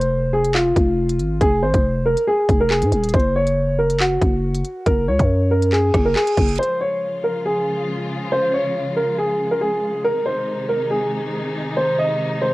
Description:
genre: hip hop, drill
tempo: 139 BPM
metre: 4/4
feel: half-time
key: unclear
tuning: A4 = 440 Hz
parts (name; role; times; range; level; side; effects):
- dark grand piano; melody; 0.0-12.5 s; F4 to Eb5; -19 LUFS; equal; cassette tape
- growling 808-style bass; bass; 0.0-6.6 s; Eb1 to Ab2; -20 LUFS; equal; none
- drill drum kit; drums; 0.0-6.7 s; handclaps, hi-hat, kick drum, rim click; -20 LUFS; equal; cassette tape
- reverse cymbal; sound effects; 5.9-6.6 s; none; -34 LUFS; right 5 dB; none
- warm symphonic string section; sustained chords; 6.6-12.5 s; C3 to F4; -26 LUFS; left 1 dB; cassette tape
room: little or no reverb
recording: home recording on cassette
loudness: -17 LUFS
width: side -19 dB against mid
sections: 0.0-6.6 A section; 6.6-12.5 B section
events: reverse cymbal 5.9-6.6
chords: 0.0 Fm; 3.1 Gb5; 6.6 Db; 10.0 Ab

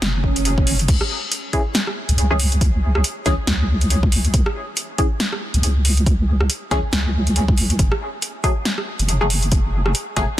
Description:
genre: deep dubstep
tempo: 139 BPM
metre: 4/4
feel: swing 58% on 16ths, half-time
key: C# minor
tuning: A4 = 440 Hz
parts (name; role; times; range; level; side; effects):
- deep soft wobble bass; bass; 0.0-10.3 s; F#1 to C#2; -18 LUFS; equal; chorus
- deep house drum kit; drums; 0.0-10.3 s; crash cymbal, hi-hat, rim click, snare drum; -22 LUFS; equal; overdrive
- swell; sound effects; 0.2-0.9 s; none; -28 LUFS; right 4 dB; none
- electronic kick drum; drums; 0.2-10.3 s; none; -19 LUFS; equal; overdrive
- filtered dub chord stab; stabs; 1.5-10.2 s; E3 to G#4; -26 LUFS; left 1 dB; wide subtle chorus, dub echo
room: digital ambience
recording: dense, heavily limited modern master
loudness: -17 LUFS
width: side -14 dB against mid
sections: 0.0-10.4 A section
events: swell 0.2-0.9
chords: none

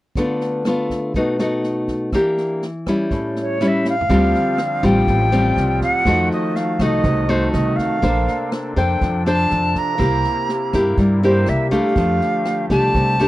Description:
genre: bossa nova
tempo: 122 BPM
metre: 4/4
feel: straight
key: D dorian, D minor from 4.1 s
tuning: A4 = 440 Hz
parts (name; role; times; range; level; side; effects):
- nylon-string guitar; accompaniment; 0.2-13.3 s; A2 to C5; -19 LUFS; left 1 dB; none
- swinging big-band drum kit; drums; 0.2-13.3 s; kick drum, rim click, snare drum, toms; -27 LUFS; right 1 dB; none
- silver concert flute; melody; 3.4-13.3 s; C5 to Bb5; -20 LUFS; equal; none
- pipe organ, soft reed; sustained chords; 4.1-13.3 s; C3 to A4; -30 LUFS; equal; none
- upright bass; bass; 4.1-13.3 s; A1 to G2; -20 LUFS; equal; none
room: little or no reverb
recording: dry, close 1970s-style studio recording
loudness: -16 LUFS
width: side -16 dB against mid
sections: 0.2-4.1 A section; 4.1-13.3 B section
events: drum fill 3.9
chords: 0.2 Dm6; 1.1 B7; 2.1 Em7b5; 3.1 A7; 4.1 Dm7; 6.1 F7b9; 8.0 Bbmaj9; 10.0 C7; 12.0 F69

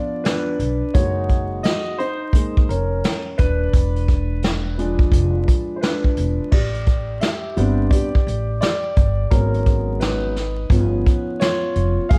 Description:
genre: hip hop, jazz-hop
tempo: 86 BPM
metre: 4/4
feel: swing 64% on 16ths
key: unclear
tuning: A4 = 440 Hz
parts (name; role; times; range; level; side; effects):
- dark baby grand piano; accompaniment; 0.0-12.2 s; E#3 to E#5; -25 LUFS; equal; subtle chorus
- vintage brush drum kit; drums; 0.2-12.2 s; crash cymbal, hi-hat, kick drum, snare drum; -20 LUFS; equal; none
- upright bass; bass; 0.6-12.2 s; D#1 to B1; -24 LUFS; equal; none
room: light reverb, studio reverb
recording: vinyl crackle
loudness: -20 LUFS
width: mono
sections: 0.0-6.5 A section; 6.5-12.2 A section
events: grand piano solo 0.0-6.5, 6.5-12.2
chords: 0.0 C#7b9 (rootless); 0.9 F#69; 3.7 E7b9; 6.5 Am11; 9.3 G#m11; 10.7 G7#11

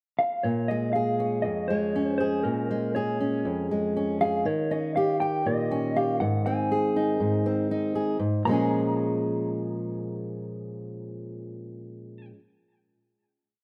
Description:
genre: indie folk with a building arrangement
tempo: 120 BPM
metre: 4/4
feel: straight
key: Bb minor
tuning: A4 = 440 Hz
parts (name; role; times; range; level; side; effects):
- mellow electric guitar; melody; 0.2-12.3 s; Bb4 to Bb5; -32 LUFS; equal; tremolo, analog delay
- fingerpicked steel-string acoustic guitar; accompaniment; 0.4-12.4 s; F2 to Ab4; -28 LUFS; equal; none
room: moderate lush hall reverb, RT60 2.4 s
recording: rough home demo mix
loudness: -27 LUFS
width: mono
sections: 0.0-0.4 pickup bar; 0.4-8.4 verse; 8.4-12.4 final chord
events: none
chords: 0.4 Bbm7; 4.5 Eb7; 6.2 Ab; 8.4 Bbm7

